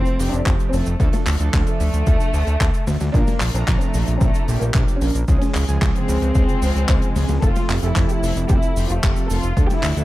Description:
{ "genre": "italo disco", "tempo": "112 BPM", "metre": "4/4", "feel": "straight", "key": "F major", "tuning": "A4 = 440 Hz", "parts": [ { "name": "dark studio violin section", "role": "melody", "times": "0.0-10.0 s", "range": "Ab3 to A4", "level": "-26 LUFS", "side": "left 1 dB", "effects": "tape echo" }, { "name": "analog synth brass", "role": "stabs", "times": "0.0-10.0 s", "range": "Db3 to Bb5", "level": "-27 LUFS", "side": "right 4 dB", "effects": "chorus" }, { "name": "fat analog bass", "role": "bass", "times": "0.0-10.0 s", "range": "F1 to D2", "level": "-20 LUFS", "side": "equal", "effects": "none" }, { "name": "tight funk drum kit", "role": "drums", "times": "0.1-10.0 s", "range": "cabasa, handclaps, hi-hat, toms", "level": "-27 LUFS", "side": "left 2 dB", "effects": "small room ambience" }, { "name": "electronic kick drum", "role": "drums", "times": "0.5-9.7 s", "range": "none", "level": "-19 LUFS", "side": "equal", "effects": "small room ambience" } ], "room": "small room ambience", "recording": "dark, warm production", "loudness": "-16 LUFS", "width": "side -16 dB against mid", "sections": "0.0-10.0 A section", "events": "none", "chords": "0.0 F; 1.0 Dm; 3.1 Bb; 5.3 Db; 7.4 F" }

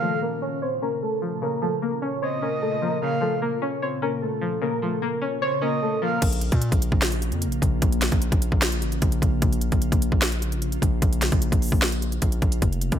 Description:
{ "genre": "hip hop, trap", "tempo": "150 BPM", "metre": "4/4", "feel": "half-time", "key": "Bb harmonic minor", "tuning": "A4 = 440 Hz", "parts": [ { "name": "warbly lo-fi synth keys", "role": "melody", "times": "0.0-6.2 s", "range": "A3 to Db5", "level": "-26 LUFS", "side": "left 1 dB", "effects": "chorus, low-pass filter" }, { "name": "breathy flute-like synth lead", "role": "second line", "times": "0.0-6.2 s", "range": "Db5 to F5", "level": "-29 LUFS", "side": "right 3 dB", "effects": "chorus, digital delay" }, { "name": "string-like resonator pluck", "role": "accompaniment", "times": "0.0-6.2 s", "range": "Db3 to Db5", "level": "-30 LUFS", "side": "left 3 dB", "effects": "chorus, low-pass filter" }, { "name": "glassy FM pad", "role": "sustained chords", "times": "0.0-13.0 s", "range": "Bb2 to F4", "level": "-31 LUFS", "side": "left 1 dB", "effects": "ensemble chorus, built-in reverb, low-pass filter" }, { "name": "distorted 808-style bass", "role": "bass", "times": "6.2-13.0 s", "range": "F1 to Bb2", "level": "-24 LUFS", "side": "equal", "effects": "distortion" }, { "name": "trap drum kit", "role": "drums", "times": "6.2-13.0 s", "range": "crash cymbal, hi-hat, kick drum, snare drum", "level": "-22 LUFS", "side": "equal", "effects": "none" } ], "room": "light reverb, digital ambience", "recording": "bright 1980s-style digital production", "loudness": "-21 LUFS", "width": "side -9 dB against mid", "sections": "0.0-6.2 A section; 6.2-13.0 B section", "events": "filter sweep 0.0-6.2", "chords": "0.0 Bbm" }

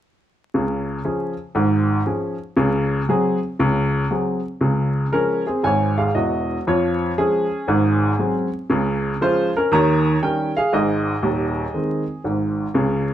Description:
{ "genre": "jazz, stride piano", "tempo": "118 BPM", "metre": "4/4", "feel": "swing 66% on 8ths", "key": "Db major", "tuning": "A4 = 440 Hz", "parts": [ { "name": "clear upright piano", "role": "solo", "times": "0.5-13.1 s", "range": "Eb1 to Bb5", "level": "-18 LUFS", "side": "equal", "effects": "none" } ], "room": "moderate studio reverb, RT60 0.8 s", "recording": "vinyl crackle", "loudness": "-18 LUFS", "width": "side -11 dB against mid", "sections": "0.5-4.6 A section; 4.6-13.1 B section", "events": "none", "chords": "0.5 Db; 2.6 Ab7/Db; 4.6 Db; 6.7 Db/F; 7.7 Ab7; 8.7 Db; 9.7 Eb7; 10.7 Ab" }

